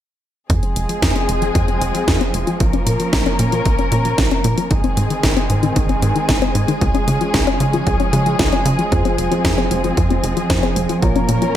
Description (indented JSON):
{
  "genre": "italo disco",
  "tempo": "114 BPM",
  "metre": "4/4",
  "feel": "straight",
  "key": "F minor",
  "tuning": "A4 = 440 Hz",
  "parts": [
    { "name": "muted studio string section", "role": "sustained chords", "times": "0.5-11.6 s", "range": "Eb3 to Bb4", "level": "-20 LUFS", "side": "equal", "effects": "none" },
    { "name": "analog pluck", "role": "arpeggios", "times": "0.5-11.5 s", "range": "Eb3 to F4", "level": "-23 LUFS", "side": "left 6 dB", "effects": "chorus, vintage 12-bit sampler grit, ping-pong delay" },
    { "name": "tight sequencer bass", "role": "bass", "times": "0.5-11.4 s", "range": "F1 to Db3", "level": "-20 LUFS", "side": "equal", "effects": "tube saturation" },
    { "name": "electronic kick drum", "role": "drums", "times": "0.5-11.1 s", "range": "none", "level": "-21 LUFS", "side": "equal", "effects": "studio ambience" },
    { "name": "house drum kit", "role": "drums", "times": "0.5-11.5 s", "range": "hi-hat, snare drum", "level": "-23 LUFS", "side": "equal", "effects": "studio ambience, gated reverb" },
    { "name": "dark concert grand piano", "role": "stabs", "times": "8.9-11.6 s", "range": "Bb2 to Db5", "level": "-23 LUFS", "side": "equal", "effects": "ping-pong delay" }
  ],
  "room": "light reverb",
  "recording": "none",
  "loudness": "-15 LUFS",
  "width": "side -11 dB against mid",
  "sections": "0.5-11.6 A section",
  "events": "filter sweep on synth arpeggio sound 0.5-11.6",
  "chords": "0.5 Fm; 2.6 Bbm; 4.7 Ab; 6.8 Db; 8.9 Fm; 11.0 Bbm",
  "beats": "| 0.50 1.02 1.55 2.08 | 2.60 3.13 3.66 4.18 | 4.71 5.24 5.76 6.29 | 6.81 7.34 7.87 8.39 | 8.92 9.45 9.97 10.50 | 11.03 11.55"
}